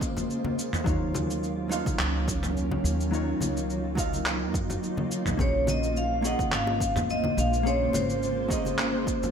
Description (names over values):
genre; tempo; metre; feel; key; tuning
sunset chillout; 106 BPM; 4/4; swing 54% on 16ths; Bb minor; A4 = 440 Hz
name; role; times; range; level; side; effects
vintage hollow-body jazz guitar; accompaniment; 0.0-9.3 s; Gb3 to F5; -31 LUFS; moving between left 5 dB and right 3 dB; auto-pan
shimmering ambient pad; sustained chords; 0.0-9.3 s; Db3 to C5; -32 LUFS; right 2 dB; chorus, built-in reverb
upright bass; bass; 0.0-9.3 s; Ab1 to Gb2; -31 LUFS; equal; none
dusty soul sampler-style drum kit; drums; 0.0-9.3 s; cabasa, handclaps, toms; -32 LUFS; equal; gated reverb
electronic kick drum; drums; 0.0-9.2 s; none; -31 LUFS; equal; overdrive
congas and bongos; percussion; 0.2-9.3 s; none; -36 LUFS; left 2 dB; none
vibraphone with hard mallets; melody; 5.4-8.5 s; C5 to Gb5; -29 LUFS; equal; ping-pong delay
room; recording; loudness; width
moderate plate reverb, RT60 1.7 s; bright 1980s-style digital production; -24 LUFS; side -7 dB against mid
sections
0.0-9.3 A section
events
none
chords
0.0 Bbm9; 0.6 Ebm9; 5.4 Bbm9